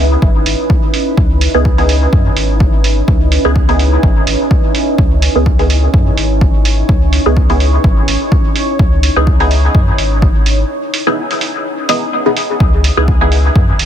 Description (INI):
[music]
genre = dub techno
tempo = 126 BPM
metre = 4/4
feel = swing 55% on 16ths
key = C# minor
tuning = A4 = 439 Hz
[part]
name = deep dark ambient pad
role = sustained chords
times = 0.0-12.6 s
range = C#4 to C#5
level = -19 LUFS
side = right 1 dB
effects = chorus, built-in reverb, sidechain pumping
[part]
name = filtered dub chord stab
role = stabs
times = 0.0-13.4 s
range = B3 to G#4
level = -17 LUFS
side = equal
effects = phaser, sidechain pumping, dub echo
[part]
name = pure sine sub bass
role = bass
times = 0.0-13.9 s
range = G#1 to F#2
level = -13 LUFS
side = equal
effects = sidechain pumping
[part]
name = electronic kick drum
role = drums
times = 0.2-13.7 s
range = none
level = -12 LUFS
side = equal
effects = overdrive, small room ambience
[part]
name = electronic hi-hat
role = drums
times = 0.5-13.9 s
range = none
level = -20 LUFS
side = right 5 dB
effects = small room ambience
[sound]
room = digital ambience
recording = dense, heavily limited modern master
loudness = -10 LUFS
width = side -10 dB against mid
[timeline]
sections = 0.0-12.6 A section; 12.6-13.9 A section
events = break 10.7-12.6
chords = 0.0 C#m9